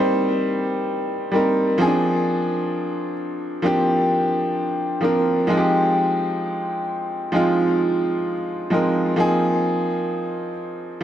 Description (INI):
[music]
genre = R&B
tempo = 65 BPM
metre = 4/4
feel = straight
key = unclear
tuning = A4 = 440 Hz
[part]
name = warm baby grand piano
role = solo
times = 0.0-11.0 s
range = F3 to C5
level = -19 LUFS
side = equal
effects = ping-pong delay
[sound]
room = moderate lush hall reverb, RT60 2.3 s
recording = none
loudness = -19 LUFS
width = side -10 dB against mid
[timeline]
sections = 0.0-11.0 A section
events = none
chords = 0.0 Eb6; 1.8 Bb9; 5.5 Fm9; 9.2 Ab69